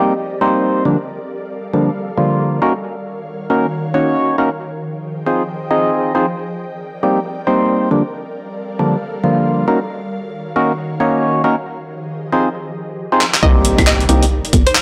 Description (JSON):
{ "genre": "UK garage, two-step garage", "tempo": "136 BPM", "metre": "4/4", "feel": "swing 62% on 16ths", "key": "C minor", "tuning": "A4 = 439 Hz", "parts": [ { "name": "ethereal airy pad", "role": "sustained chords", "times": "0.0-14.8 s", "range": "Eb3 to G5", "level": "-28 LUFS", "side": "equal", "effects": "ensemble chorus, built-in reverb, sidechain pumping" }, { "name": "percussive organ stab", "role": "stabs", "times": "0.0-14.3 s", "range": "D3 to Eb5", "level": "-18 LUFS", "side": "equal", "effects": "chorus, analog delay" }, { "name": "boom bap sampler-style drum kit", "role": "drums", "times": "13.2-14.8 s", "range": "claves, handclaps, hi-hat, snare drum", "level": "-19 LUFS", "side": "equal", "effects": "overdrive" }, { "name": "string-like resonator pluck", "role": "melody", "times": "13.4-14.8 s", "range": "C5 to Eb5", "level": "-21 LUFS", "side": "equal", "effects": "chorus, cassette tape, analog delay" }, { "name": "hollow knocking FM bass", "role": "bass", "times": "13.4-14.6 s", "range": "G1 to C2", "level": "-17 LUFS", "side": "equal", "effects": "tube saturation" }, { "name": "electronic kick drum", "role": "drums", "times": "13.4-14.6 s", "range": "none", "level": "-17 LUFS", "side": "equal", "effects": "overdrive" }, { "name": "impact", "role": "sound effects", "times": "13.5-14.8 s", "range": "none", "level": "-26 LUFS", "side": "equal", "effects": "none" } ], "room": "light reverb", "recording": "dry, gritty hardware recording", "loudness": "-17 LUFS", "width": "mono", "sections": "0.0-13.4 A section; 13.4-14.8 B section", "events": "filter sweep on synth stab 0.0-13.4; drum fill 13.2; drop 13.4-14.8; impact 13.4-14.8", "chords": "0.0 Cm7; 0.9 Gm7; 2.6 Ebm7; 4.6 Fm7; 6.4 Cm7; 7.9 Gm7; 9.7 Ebm7; 11.7 Fm7; 13.4 Cm7" }